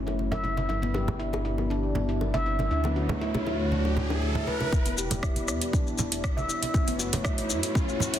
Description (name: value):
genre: afro house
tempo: 119 BPM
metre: 4/4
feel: straight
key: E dorian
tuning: A4 = 436 Hz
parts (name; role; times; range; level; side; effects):
- dark analog pad; sustained chords; 0.0-8.2 s; A3 to D5; -33 LUFS; left 1 dB; chorus, sidechain pumping
- dark detuned saw bass; bass; 0.0-8.2 s; D1 to F#2; -31 LUFS; equal; sidechain pumping
- handpan; arpeggios; 0.1-8.2 s; B3 to E5; -31 LUFS; equal; sidechain pumping, low-pass filter, ping-pong delay
- bongos; percussion; 0.1-4.6 s; none; -37 LUFS; left 3 dB; none
- congas; percussion; 0.2-8.1 s; none; -33 LUFS; right 2 dB; none
- riser; sound effects; 2.1-8.2 s; none; -36 LUFS; right 2 dB; none
- electronic kick drum; drums; 4.7-7.9 s; none; -26 LUFS; equal; small room reverb
- maracas; percussion; 4.7-8.2 s; none; -34 LUFS; left 5 dB; none
- afro-pop drum kit; drums; 4.9-8.2 s; hi-hat, rim click; -33 LUFS; right 1 dB; high-pass filter on hats, small room reverb, soft clipping on snare, high-pass filter on snare
room: light reverb, small room ambience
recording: dense, heavily limited modern master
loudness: -25 LUFS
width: side -10 dB against mid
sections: 0.0-4.7 A section; 4.7-8.2 B section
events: riser 2.1-4.7, 4.7-8.2; build-up 4.7-8.2; filter sweep on handpan 4.7-8.2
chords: 0.0 F#m7; 0.7 G; 2.7 Dmaj7; 4.7 Em7; 6.7 F#m7